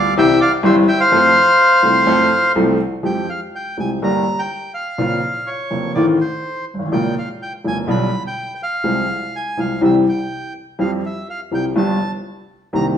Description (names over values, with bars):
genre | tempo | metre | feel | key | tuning
tango | 124 BPM | 4/4 | rubato | F major, F harmonic minor from 3.0 s | A4 = 440 Hz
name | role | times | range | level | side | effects
bandoneon | melody | 0.0-12.9 s | C5 to B5 | -17 LUFS | equal | none
clear upright piano | accompaniment | 0.0-12.9 s | F1 to A4 | -17 LUFS | left 1 dB | none
room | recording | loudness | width
wet stone room reverb, RT60 1.2 s | band playing live in one room | -14 LUFS | side -9 dB against mid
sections
0.0-3.0 A section; 3.0-13.0 B section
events
none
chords
0.2 C; 1.1 F; 3.0 Fmadd9; 4.0 Gm; 5.0 Bbmadd9; 6.0 F7/A; 6.9 Bbm7; 7.9 G7/B; 8.9 Fm/C; 9.8 C; 10.8 Fsus2; 11.8 G7